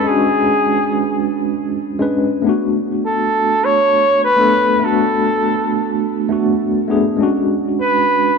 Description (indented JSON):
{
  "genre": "chillout",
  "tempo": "101 BPM",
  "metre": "4/4",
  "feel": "straight",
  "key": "B dorian",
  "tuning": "A4 = 440 Hz",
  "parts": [
    { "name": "warm flugelhorn", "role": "melody", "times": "0.0-8.4 s", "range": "G#4 to C#5", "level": "-15 LUFS", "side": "equal", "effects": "ping-pong delay" },
    { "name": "tine electric piano", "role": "accompaniment", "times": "0.0-8.4 s", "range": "G#3 to B4", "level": "-16 LUFS", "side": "moving between left 4 dB and right 8 dB", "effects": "medium tremolo, auto-pan, ping-pong delay" }
  ],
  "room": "moderate lush hall reverb, RT60 2.3 s",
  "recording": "none",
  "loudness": "-14 LUFS",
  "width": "side -5 dB against mid",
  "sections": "0.0-8.4 A section",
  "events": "none",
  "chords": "0.0 Bm69; 2.4 Bm7/A; 7.2 Bm69",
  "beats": "| 0.07 0.66 1.26 1.85 | 2.45 3.04 3.63 4.23 | 4.82 5.42 6.01 6.61 | 7.20 7.79"
}